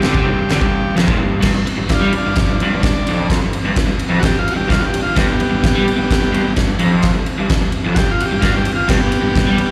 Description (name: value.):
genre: garage rock duo or trio.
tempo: 129 BPM.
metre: 4/4.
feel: straight.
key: G mixolydian.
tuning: A4 = 440 Hz.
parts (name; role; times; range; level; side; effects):
overdriven combo organ; melody; 0.0-9.7 s; F3 to G4; -22 LUFS; equal; none.
crunchy overdriven guitar; riff; 0.0-9.6 s; F2 to G3; -20 LUFS; equal; none.
oversized low-tuned drum kit; drums; 0.0-9.7 s; crash cymbal, kick drum, ride cymbal, snare drum; -20 LUFS; equal; none.
room: light reverb, small room ambience.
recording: live gig heard through the venue's PA, recital hall reverb.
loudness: -16 LUFS.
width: mono.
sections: 0.0-1.4 A section; 1.4-9.7 B section.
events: transistor combo organ solo 1.4-9.7.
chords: 0.0 G5; 1.4 G.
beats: 0.03 0.50 0.97 | 1.43 1.90 2.37 2.83 | 3.30 3.77 4.23 4.70 | 5.16 5.63 6.10 6.56 | 7.03 7.49 7.96 8.42 | 8.89 9.35.